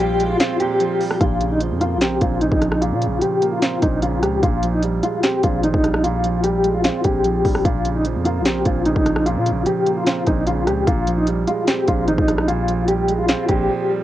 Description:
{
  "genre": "hip hop, trap",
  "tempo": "149 BPM",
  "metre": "4/4",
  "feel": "half-time",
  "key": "Bb dorian",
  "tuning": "A4 = 440 Hz",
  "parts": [
    { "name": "mellow electric guitar", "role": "melody", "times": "0.0-14.0 s", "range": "Eb4 to G4", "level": "-20 LUFS", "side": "left 2 dB", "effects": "tremolo, low-pass filter, cassette tape, plate reverb" },
    { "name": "clear concert grand piano", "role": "accompaniment", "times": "0.0-14.0 s", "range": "Bb2 to C4", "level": "-24 LUFS", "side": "right 6 dB", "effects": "low-pass filter, cassette tape, plate reverb" },
    { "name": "granular cloud pad", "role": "sustained chords", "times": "0.0-1.2 s", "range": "G4 to C6", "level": "-32 LUFS", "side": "right 2 dB", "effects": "built-in reverb, cassette tape, plate reverb" },
    { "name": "growling 808-style bass", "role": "bass", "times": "0.0-13.7 s", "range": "Ab1 to Bb2", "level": "-23 LUFS", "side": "equal", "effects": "none" },
    { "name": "trap drum kit", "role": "drums", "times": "0.2-13.6 s", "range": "hi-hat, kick drum, rim click, snare drum", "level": "-21 LUFS", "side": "equal", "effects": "vintage 12-bit sampler grit" }
  ],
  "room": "light reverb",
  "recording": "home recording on cassette",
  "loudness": "-16 LUFS",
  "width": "side -13 dB against mid",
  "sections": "0.0-1.2 A section; 1.2-14.0 B section",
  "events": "kick muted 0.4-1.2; filter sweep 1.2-14.0; silent gap 13.7-14.0",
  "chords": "0.0 Fmadd9; 1.2 Bbmadd9; 4.4 Fmadd9; 7.7 Bbmadd9; 10.9 Fmadd9"
}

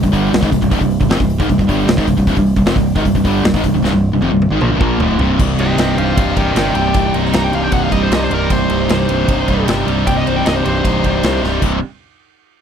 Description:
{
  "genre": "heavy metal",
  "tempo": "154 BPM",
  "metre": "4/4",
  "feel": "straight",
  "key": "C minor",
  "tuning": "A4 = 440 Hz",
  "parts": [
    { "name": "distorted electric guitar", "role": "riff", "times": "0.0-11.8 s", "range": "C2 to Eb4", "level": "-18 LUFS", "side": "left 12 dB", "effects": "overdrive" },
    { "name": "distorted electric guitar", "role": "riff", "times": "0.0-11.8 s", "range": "C2 to Eb4", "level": "-18 LUFS", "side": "right 11 dB", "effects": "distortion" },
    { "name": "modern bright picked electric bass", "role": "bass", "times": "0.0-11.8 s", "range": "C1 to C2", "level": "-19 LUFS", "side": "equal", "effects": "none" },
    { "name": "big rock drum kit", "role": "drums", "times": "0.0-11.7 s", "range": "crash cymbal, hi-hat, kick drum, ride cymbal, snare drum, toms", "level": "-18 LUFS", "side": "equal", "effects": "none" },
    { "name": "smooth overdriven lead guitar", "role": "melody", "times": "5.6-11.4 s", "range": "G4 to Bb5", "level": "-20 LUFS", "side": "left 1 dB", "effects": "slapback echo" }
  ],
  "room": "little or no reverb",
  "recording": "dry, close 1970s-style studio recording",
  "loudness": "-12 LUFS",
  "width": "side -8 dB against mid",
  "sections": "0.0-5.4 A section; 5.4-11.6 B section",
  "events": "drum fill 3.8-5.4, 11.4; lead electric guitar solo 5.4-11.6",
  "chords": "0.0 Cm; 11.6 C5"
}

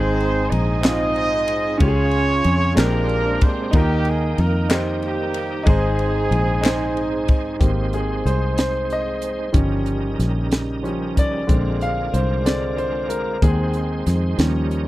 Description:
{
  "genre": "slow gospel",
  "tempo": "62 BPM (dotted quarters)",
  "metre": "6/8",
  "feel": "straight",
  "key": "Ab major",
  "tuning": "A4 = 440 Hz",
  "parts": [
    { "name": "warm horn section", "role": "melody", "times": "0.0-7.3 s", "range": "G3 to Eb5", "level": "-23 LUFS", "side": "right 1 dB", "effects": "none" },
    { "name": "clear grand piano", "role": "accompaniment", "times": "0.0-14.9 s", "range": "Ab2 to G5", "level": "-23 LUFS", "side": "equal", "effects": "none" },
    { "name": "bright tonewheel organ", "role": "sustained chords", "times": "0.0-14.9 s", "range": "Db3 to G5", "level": "-30 LUFS", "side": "right 3 dB", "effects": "slow rotary speaker, overdrive, chorus vibrato" },
    { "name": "fingered electric bass", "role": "bass", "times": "0.0-14.9 s", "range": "G1 to F2", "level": "-22 LUFS", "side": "equal", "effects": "none" },
    { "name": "crisp fusion drum kit", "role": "drums", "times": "0.2-14.9 s", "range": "hi-hat, kick drum, ride cymbal, snare drum", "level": "-18 LUFS", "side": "equal", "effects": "none" },
    { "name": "group handclap", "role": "percussion", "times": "0.8-6.9 s", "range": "none", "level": "-30 LUFS", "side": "left 2 dB", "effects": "none" }
  ],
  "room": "little or no reverb",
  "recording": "dry, close 1970s-style studio recording",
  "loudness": "-17 LUFS",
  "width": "side -16 dB against mid",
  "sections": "0.0-7.6 A section; 7.6-14.9 B section",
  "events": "grand piano solo 7.6-14.9",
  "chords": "0.0 Ab; 1.8 Db; 2.8 Bb13; 3.7 Eb; 5.7 Ab; 7.6 Abmaj7; 9.5 Eb7/G; 11.5 Bb7; 13.4 Ab/Eb"
}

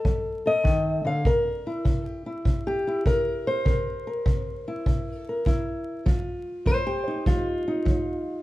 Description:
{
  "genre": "acoustic country blues, solo or duo",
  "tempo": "100 BPM",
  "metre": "4/4",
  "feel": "swing 67% on 8ths",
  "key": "C mixolydian",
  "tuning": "A4 = 445 Hz",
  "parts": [
    { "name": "fingerpicked old ladder-braced acoustic guitar", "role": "melody", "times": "0.0-8.4 s", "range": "C3 to F5", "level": "-26 LUFS", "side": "left 1 dB", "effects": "none" },
    { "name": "kick drum", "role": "drums", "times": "0.0-8.1 s", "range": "none", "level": "-25 LUFS", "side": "equal", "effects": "none" }
  ],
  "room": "moderate large studio reverb, RT60 1.1 s",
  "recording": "band playing live in one room, vinyl crackle",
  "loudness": "-23 LUFS",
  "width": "side -16 dB against mid",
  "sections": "0.0-8.4 A section",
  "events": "none",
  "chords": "0.0 F7; 1.3 C7; 6.1 F5"
}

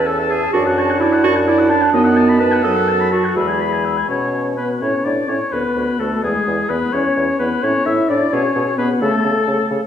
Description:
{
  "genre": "quick classical-period movement for wind quintet",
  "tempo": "86 BPM (dotted quarters)",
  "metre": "6/8",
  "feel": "straight",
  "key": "A major",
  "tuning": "A4 = 438 Hz",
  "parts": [
    { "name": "concert flute", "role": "melody", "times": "0.0-9.7 s", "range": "G#4 to B5", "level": "-23 LUFS", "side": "left 5 dB", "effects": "none" },
    { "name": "warm oboe", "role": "second line", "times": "0.0-9.7 s", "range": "G#4 to B5", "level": "-22 LUFS", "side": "left 3 dB", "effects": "none" },
    { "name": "mellow French horn", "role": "accompaniment", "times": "0.0-9.7 s", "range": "F#3 to E4", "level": "-21 LUFS", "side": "left 1 dB", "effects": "none" },
    { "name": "warm clarinet", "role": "accompaniment", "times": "0.0-9.8 s", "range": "B3 to B4", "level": "-19 LUFS", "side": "right 4 dB", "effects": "none" },
    { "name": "dark bassoon", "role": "bass", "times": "0.0-9.8 s", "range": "D2 to C#3", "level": "-21 LUFS", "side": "right 1 dB", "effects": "none" }
  ],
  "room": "wet recital hall reverb, RT60 1.8 s",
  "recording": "heard from further back in the room",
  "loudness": "-14 LUFS",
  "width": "side -9 dB against mid",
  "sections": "0.0-4.8 A section; 4.8-9.9 B section",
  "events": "none",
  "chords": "0.0 A; 0.5 D/F#; 1.9 B7/F#; 3.4 E; 4.8 A5; 5.5 Bm/D; 6.2 E; 7.6 A5; 8.3 G#madd11/B; 9.0 A/C#"
}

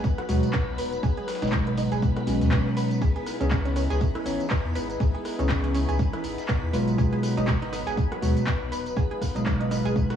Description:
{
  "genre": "deep house",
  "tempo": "121 BPM",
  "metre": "4/4",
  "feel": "swing 57% on 16ths",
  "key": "C# minor",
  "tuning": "A4 = 440 Hz",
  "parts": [
    { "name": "warm analog pad", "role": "sustained chords", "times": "0.0-10.2 s", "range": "F#3 to B4", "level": "-34 LUFS", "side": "left 2 dB", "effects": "chorus, sidechain pumping, cassette tape" },
    { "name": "warm sub bass", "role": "bass", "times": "0.0-9.9 s", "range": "D#1 to E2", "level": "-29 LUFS", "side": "left 1 dB", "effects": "sidechain pumping" },
    { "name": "deep house drum kit", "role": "drums", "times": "0.0-10.2 s", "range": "handclaps, hi-hat, rim click, tambourine", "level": "-35 LUFS", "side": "left 1 dB", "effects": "overdrive, cassette tape" },
    { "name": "dusty soul sampler-style drum kit", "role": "drums", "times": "0.0-10.2 s", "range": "hi-hat, snare drum", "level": "-46 LUFS", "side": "left 1 dB", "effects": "none" },
    { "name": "electronic kick drum", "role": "drums", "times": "0.0-10.1 s", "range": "none", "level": "-25 LUFS", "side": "equal", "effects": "cassette tape" },
    { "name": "string machine, violins", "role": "texture", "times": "0.0-10.2 s", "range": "B3 to B5", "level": "-37 LUFS", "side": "left 3 dB", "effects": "ensemble chorus, sidechain pumping, cassette tape" },
    { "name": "analog pluck", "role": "arpeggios", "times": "0.2-10.2 s", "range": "B3 to B4", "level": "-33 LUFS", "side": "right 7 dB", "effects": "chorus, vintage 12-bit sampler grit, sidechain pumping, cassette tape, analog delay" },
    { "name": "bell-like tine electric piano", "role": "stabs", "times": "0.3-10.2 s", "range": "B2 to C#5", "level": "-27 LUFS", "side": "equal", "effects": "sidechain pumping, cassette tape, analog delay" }
  ],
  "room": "light reverb, digital ambience",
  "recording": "home recording on cassette",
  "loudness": "-23 LUFS",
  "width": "side -9 dB against mid",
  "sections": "0.0-10.2 A section",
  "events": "none",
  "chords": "0.0 G#m7; 3.0 C#m7; 7.0 G#m7"
}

